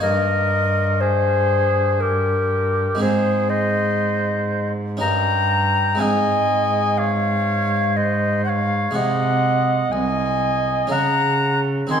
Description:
classical, baroque-style sonata movement with continuo; 61 BPM; 3/4; straight; Ab major; A4 = 437 Hz
tenor recorder; melody; 0.0-12.0 s; Bb4 to C6; -21 LUFS; left 6 dB
warm oboe; second line; 0.0-12.0 s; G4 to Ab5; -24 LUFS; right 5 dB
harpsichord; accompaniment; 0.0-12.0 s; C2 to Bb4; -27 LUFS; right 2 dB
warm cello; bass; 0.0-12.0 s; C2 to Eb3; -22 LUFS; right 2 dB
wet recital hall reverb, RT60 1.3 s; dark, warm production; -17 LUFS; side -7 dB against mid
0.0-12.0 A section
0.0 Eb/G; 3.0 Ab; 5.0 Eb7/G; 6.0 Ab; 8.9 Ab7/C; 10.9 Db5
| 0.03 1.02 2.01 | 3.00 4.00 5.02 | 6.01 6.99 7.97 | 8.95 9.93 10.91 | 11.90

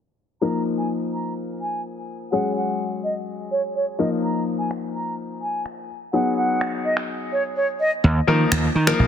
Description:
dance-pop; 126 BPM; 4/4; straight; Eb minor; A4 = 440 Hz
bright concert flute; melody; 0.4-7.9 s; Db5 to Bb5; -25 LUFS; right 2 dB; ping-pong delay
clear concert grand piano; accompaniment; 0.4-9.1 s; F3 to Bb4; -24 LUFS; left 4 dB
electronic finger snaps; drums; 4.7-9.0 s; -26 LUFS; right 1 dB; soft clipping on snare
gritty slap bass; bass; 8.0-9.1 s; Bb1 to Eb3; -18 LUFS; right 1 dB; overdrive
light reverb; dense, heavily limited modern master, low-pass filter; -21 LUFS; side -8 dB against mid
0.4-8.0 A section; 8.0-9.1 B section
filter sweep 0.4-8.0; silent gap 7.1-8.0
0.4 Ebsus2; 2.3 Dbsus4; 4.0 Bbsus4; 6.1 Abm7; 8.0 Ebsus2
| 0.42 0.90 1.37 1.85 | 2.33 2.80 3.28 3.75 | 4.23 4.71 5.18 5.66 | 6.13 6.61 7.09 7.56 | 8.04 8.52 8.99

